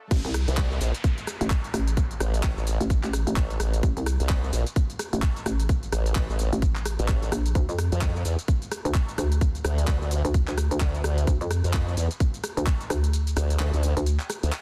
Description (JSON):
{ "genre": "bass house", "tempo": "129 BPM", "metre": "4/4", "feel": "swing 59% on 16ths", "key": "A phrygian", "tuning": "A4 = 440 Hz", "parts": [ { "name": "swell and downlifter", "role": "sound effects", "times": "0.0-3.8 s", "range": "none", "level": "-43 LUFS", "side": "equal", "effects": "none" }, { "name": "hollow knocking FM bass", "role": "bass", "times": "0.1-14.2 s", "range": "A1 to F2", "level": "-27 LUFS", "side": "equal", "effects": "tube saturation, sidechain pumping" }, { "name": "electronic kick drum", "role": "drums", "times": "0.1-12.8 s", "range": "none", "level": "-27 LUFS", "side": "equal", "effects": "none" }, { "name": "garage drum kit", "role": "drums", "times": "0.1-14.6 s", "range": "crash cymbal, handclaps, hi-hat, rim click, shaker", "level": "-35 LUFS", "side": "equal", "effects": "none" }, { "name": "formant-sweep wobble bass", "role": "bass", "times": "0.5-14.5 s", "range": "A1 to F2", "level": "-27 LUFS", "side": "equal", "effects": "chorus, sidechain pumping" } ], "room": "little or no reverb", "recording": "dense, heavily limited modern master, high-pass filter", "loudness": "-25 LUFS", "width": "mono", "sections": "0.1-14.6 A section", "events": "drop 0.1-14.6; kick drops out 13.1-14.6", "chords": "0.1 Am; 7.6 Dm" }